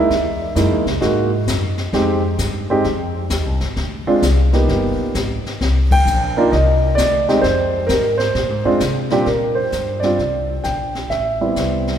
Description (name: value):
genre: jazz piano trio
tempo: 131 BPM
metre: 4/4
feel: swing 66% on 8ths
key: unclear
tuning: A4 = 441 Hz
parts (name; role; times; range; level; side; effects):
- warm grand piano; melody; 0.0-12.0 s; Bb2 to G5; -17 LUFS; right 1 dB; none
- upright bass; bass; 0.0-12.0 s; G1 to C3; -20 LUFS; left 1 dB; none
- jazz brush drum kit; drums; 0.1-12.0 s; brushed snare drum, hi-hat, kick drum, ride cymbal, snare drum; -25 LUFS; left 3 dB; none
room: wet church reverb, RT60 3.1 s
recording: recorded in a church or concert hall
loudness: -15 LUFS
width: side -9 dB against mid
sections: 0.0-9.3 A section; 9.3-12.0 B section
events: band accent 5.8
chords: 0.1 C7#9b13 (rootless); 1.9 Fm9; 3.8 D7(no3); 4.7 Gaug; 5.6 Cm9; 7.4 Fm; 8.4 Bb9; 9.3 Bb6; 11.1 Am7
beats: | 0.10 0.56 1.01 1.47 | 1.93 2.39 2.85 3.31 | 3.76 4.22 4.68 5.14 | 5.60 6.06 6.52 6.97 | 7.43 7.89 8.35 8.81 | 9.27 9.73 10.19 10.65 | 11.11 11.57